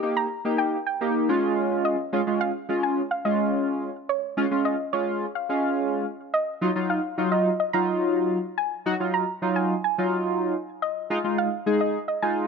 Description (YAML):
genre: pop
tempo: 107 BPM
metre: 4/4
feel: straight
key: unclear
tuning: A4 = 442 Hz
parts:
  - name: chorused polysynth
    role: accompaniment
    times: 0.0-12.5 s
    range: Gb3 to Ab4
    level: -24 LUFS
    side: equal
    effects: none
  - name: soft round pluck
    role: melody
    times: 0.2-12.5 s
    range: Db5 to Bb5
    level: -28 LUFS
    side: right 1 dB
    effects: chorus
room: light reverb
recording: none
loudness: -23 LUFS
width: side -5 dB against mid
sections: 0.0-12.5 A section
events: none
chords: 0.0 Eb; 1.3 Db; 6.1 Ebmadd9; 10.5 Fm7